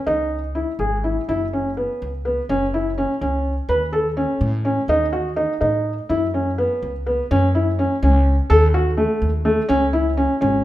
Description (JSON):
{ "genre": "contemporary instrumental, chamber music in an uneven meter", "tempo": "250 BPM (eighths)", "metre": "5/8", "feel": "straight", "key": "unclear", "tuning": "A4 = 437 Hz", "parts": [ { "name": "felt-muted upright piano", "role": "arpeggios", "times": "0.1-10.6 s", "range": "A3 to B4", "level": "-19 LUFS", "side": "equal", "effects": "none" }, { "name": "upright bass", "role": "bass", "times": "0.1-10.6 s", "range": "F#1 to A2", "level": "-22 LUFS", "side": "equal", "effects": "none" } ], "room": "moderate recital hall reverb, RT60 1.4 s", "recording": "minimal, uncompressed stereo recording", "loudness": "-18 LUFS", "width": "side -14 dB against mid", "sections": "0.0-1.3 A section; 1.3-10.6 B section", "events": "none", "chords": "0.1 C#m; 1.3 F#5; 3.7 D#7(b5, no3); 6.1 F#5; 8.5 D#dim; 9.7 C#m", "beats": "| 0.07 0.31 0.55 0.79 1.04 | 1.28 1.53 1.77 2.01 2.25 | 2.49 2.73 2.97 3.21 3.45 | 3.69 3.93 4.17 4.41 4.65 | 4.89 5.13 5.37 5.61 5.85 | 6.10 6.34 6.58 6.83 7.07 | 7.31 7.55 7.79 8.02 8.26 | 8.50 8.74 8.98 9.21 9.45 | 9.69 9.93 10.17 10.42" }